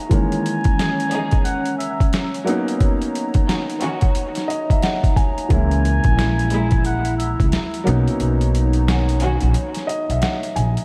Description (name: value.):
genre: hip hop, boom-bap hip-hop.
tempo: 89 BPM.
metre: 4/4.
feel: swing 61% on 16ths.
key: unclear.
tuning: A4 = 440 Hz.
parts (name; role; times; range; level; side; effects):
warm upright piano; accompaniment; 0.0-10.8 s; D#3 to G#5; -27 LUFS; equal; cassette tape, high-pass filter, low-pass filter.
dark analog pad; sustained chords; 0.0-10.8 s; C#4 to A#5; -30 LUFS; equal; chorus, high-pass filter, low-pass filter.
trumpet with cup mute; melody; 0.1-7.5 s; E5 to G#5; -30 LUFS; equal; high-pass filter, low-pass filter, tape echo.
boom bap sampler-style drum kit; drums; 0.1-10.8 s; hi-hat, kick drum, snare drum; -22 LUFS; equal; overdrive.
warm studio string section; stabs; 0.8-9.5 s; A#2 to G#4; -31 LUFS; equal; high-pass filter, low-pass filter, tape echo.
upright bass; bass; 5.5-10.7 s; A#1 to C#2; -21 LUFS; equal; none.
room: light reverb, small room ambience.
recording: vinyl crackle.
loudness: -19 LUFS.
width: mono.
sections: 0.0-10.8 A section.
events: kick muted 8.2-10.8.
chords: 0.1 C#m69; 2.5 Bmaj9; 5.5 C#m6; 7.9 Bmaj9.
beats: | 0.11 0.78 1.46 2.13 | 2.81 3.48 4.15 4.83 | 5.50 6.18 6.85 7.52 | 8.20 8.87 9.55 10.22.